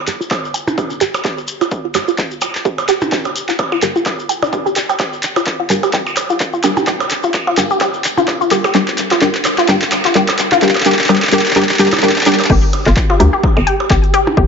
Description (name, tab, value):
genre	minimal techno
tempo	128 BPM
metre	4/4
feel	swing 56% on 16ths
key	G minor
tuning	A4 = 439 Hz
part	resonant blip pluck	riff	0.1-14.4 s	F4 to G5	-17 LUFS	left 1 dB	chorus, phaser, sidechain pumping, digital delay
part	filtered dub chord stab	stabs	0.1-13.3 s	G3 to Bb4	-17 LUFS	equal	phaser, ping-pong delay
part	punchy analog drum machine	drums	0.1-14.2 s	crash cymbal, handclaps, hi-hat	-18 LUFS	equal	overdrive
part	shekere	percussion	0.1-12.5 s	none	-28 LUFS	left 5 dB	none
part	electronic kick drum	drums	0.3-14.5 s	none	-18 LUFS	equal	overdrive, high-pass filter on kick
part	percussion blips	percussion	0.3-14.4 s	none	-22 LUFS	right 3 dB	overdrive, ping-pong delay
part	hollow knocking FM bass	bass	12.5-14.5 s	G1 to D2	-12 LUFS	equal	tube saturation, sidechain pumping
part	flickering grainy texture	texture	12.8-14.5 s	G4	-23 LUFS	right 2 dB	built-in reverb, sidechain pumping
room	moderate plate reverb, RT60 2.0 s, digital ambience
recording	nothing above 7.6 kHz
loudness	-12 LUFS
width	side -6 dB against mid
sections	0.0-12.5 A section; 12.5-14.5 B section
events	build-up 0.0-12.5; drum fill 0.0-12.5; filter sweep on synth pluck 0.0-12.5; filter sweep on synth stab 0.0-12.5; drop 12.5-14.5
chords	0.0 Gm; 12.5 N.C.